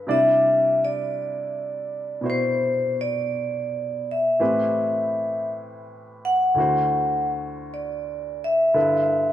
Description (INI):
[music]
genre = jazz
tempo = 55 BPM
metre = 4/4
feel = swing 67% on 8ths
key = unclear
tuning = A4 = 440 Hz
[part]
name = vibraphone with medium hard mallets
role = melody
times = 0.0-9.3 s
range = B4 to F#5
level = -21 LUFS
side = left 1 dB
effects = none
[part]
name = clear baby grand piano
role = accompaniment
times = 0.0-9.3 s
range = D2 to D5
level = -28 LUFS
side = right 1 dB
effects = none
[sound]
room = wet echo chamber reverb, RT60 2.0 s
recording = heard from further back in the room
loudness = -20 LUFS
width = side -12 dB against mid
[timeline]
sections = 0.0-9.3 A section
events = none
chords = 0.1 Cmaj9; 4.4 Am7; 6.6 D9; 8.8 G69